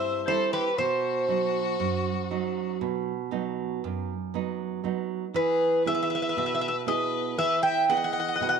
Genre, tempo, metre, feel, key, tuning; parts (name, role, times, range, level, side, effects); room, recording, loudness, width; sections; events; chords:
greek folk, Greek bouzouki band; 118 BPM (eighths); 9/8; straight; A4 = 440 Hz
Greek bouzouki; melody; 0.0-8.6 s; B4 to G5; -26 LUFS; right 1 dB
clear violin; second line; 0.0-8.6 s; F#4 to E5; -32 LUFS; left 11 dB
nylon-string guitar; accompaniment; 0.0-8.6 s; F#2 to G#4; -30 LUFS; right 9 dB
moderate echo chamber reverb, RT60 1.6 s, studio reverb; 1960s-style stereo with parts hard left and right; -25 LUFS; side -6 dB against mid
0.0-8.6 A section
0.0 C; 0.8 B; 5.3 E